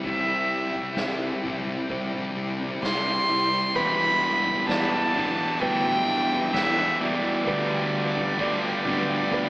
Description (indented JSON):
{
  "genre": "post-rock",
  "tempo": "65 BPM",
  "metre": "4/4",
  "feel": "straight",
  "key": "E minor",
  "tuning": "A4 = 441 Hz",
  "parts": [
    { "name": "dark studio string section", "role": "sustained chords", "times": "0.0-9.5 s", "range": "E4 to G5", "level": "-35 LUFS", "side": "equal", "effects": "none" },
    { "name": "mellow electric guitar", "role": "arpeggios", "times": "0.0-9.5 s", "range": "C3 to B4", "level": "-37 LUFS", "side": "equal", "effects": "none" },
    { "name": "thick fuzz guitar", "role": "riff", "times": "0.0-9.5 s", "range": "C3 to E4", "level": "-30 LUFS", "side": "left 2 dB", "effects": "distortion" },
    { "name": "fuzz fingered electric bass", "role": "bass", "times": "0.0-9.5 s", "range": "E1 to D2", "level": "-34 LUFS", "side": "equal", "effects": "overdrive" },
    { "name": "soft-mallet drum kit", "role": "drums", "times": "0.0-9.5 s", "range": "kick drum, snare drum, toms", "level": "-34 LUFS", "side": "equal", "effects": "none" },
    { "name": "rich violin", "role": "melody", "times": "0.1-9.5 s", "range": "D5 to C6", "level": "-25 LUFS", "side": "equal", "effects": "none" },
    { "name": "felt-muted upright piano", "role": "arpeggios", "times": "1.0-9.5 s", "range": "B4 to E5", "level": "-37 LUFS", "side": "right 2 dB", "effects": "none" },
    { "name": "distorted electric guitar", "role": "riff", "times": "3.7-9.5 s", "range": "E2 to G3", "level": "-29 LUFS", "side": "right 2 dB", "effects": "overdrive" }
  ],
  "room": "wet cathedral reverb, RT60 5.2 s",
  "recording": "recorded in a church or concert hall, AM radio sound",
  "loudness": "-22 LUFS",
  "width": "side -20 dB against mid",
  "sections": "0.0-9.5 A section",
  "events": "build-up 0.0-9.5",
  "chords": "0.0 Cmaj7; 3.8 Em7; 7.5 G7/D"
}